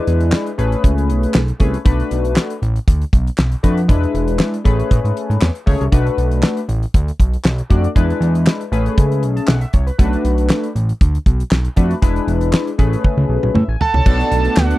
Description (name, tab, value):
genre	early-eighties boogie funk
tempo	118 BPM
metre	4/4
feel	straight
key	B dorian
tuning	A4 = 444 Hz
part	chorused polysynth	accompaniment	0.0-14.7 s	G#3 to A5	-20 LUFS	left 3 dB	none
part	fat analog bass	bass	0.1-14.7 s	E1 to A2	-17 LUFS	equal	none
part	damped 70s drum kit	drums	0.1-14.8 s	crash cymbal, handclaps, hi-hat, kick drum, snare drum, toms	-14 LUFS	equal	none
part	fat analog lead	melody	13.8-14.8 s	F#5 to A5	-18 LUFS	right 3 dB	chorus
part	warm studio string section	sustained chords	14.1-14.8 s	A3 to D4	-24 LUFS	right 4 dB	none
room	little or no reverb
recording	dry, close 1970s-style studio recording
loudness	-14 LUFS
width	side -17 dB against mid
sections	0.0-14.1 A section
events	drum fill 13.0-14.1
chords	0.0 E7; 0.6 Amaj9; 1.9 Bm7; 3.9 E7; 4.7 Amaj9; 5.9 Bm7; 8.0 E7; 8.7 Amaj9; 10.0 Bm7; 12.0 E7; 12.8 Amaj9; 14.1 Bm7